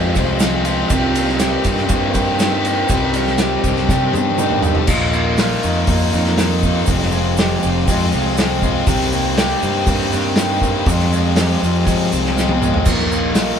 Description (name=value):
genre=indie rock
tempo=120 BPM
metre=4/4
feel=straight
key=C minor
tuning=A4 = 440 Hz
part: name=electric guitar through a small old amp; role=riff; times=0.0-13.6 s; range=F2 to G4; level=-21 LUFS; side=right 4 dB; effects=none
part: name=fuzz guitar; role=riff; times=0.0-13.6 s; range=F2 to G4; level=-19 LUFS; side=left 4 dB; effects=distortion
part: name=fuzz fingered electric bass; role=bass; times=0.0-13.5 s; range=F1 to F3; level=-21 LUFS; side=equal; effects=overdrive
part: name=vintage drum kit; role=drums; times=0.2-13.5 s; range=crash cymbal, hi-hat, kick drum, ride cymbal, snare drum, toms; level=-19 LUFS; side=equal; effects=none
part: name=tube shaker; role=percussion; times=0.2-13.5 s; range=none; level=-34 LUFS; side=right 6 dB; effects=none
room=light reverb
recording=band playing live in one room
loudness=-14 LUFS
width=side -8 dB against mid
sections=0.0-4.9 A section; 4.9-13.6 B section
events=drum fill 3.9-4.9, 12.4-12.9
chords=0.0 Fmadd9; 0.9 Cm7; 2.9 Cmadd9; 4.9 Bbsus4; 6.9 Fmadd9; 8.9 Cm7; 10.9 Fmadd9; 12.9 Bbsus4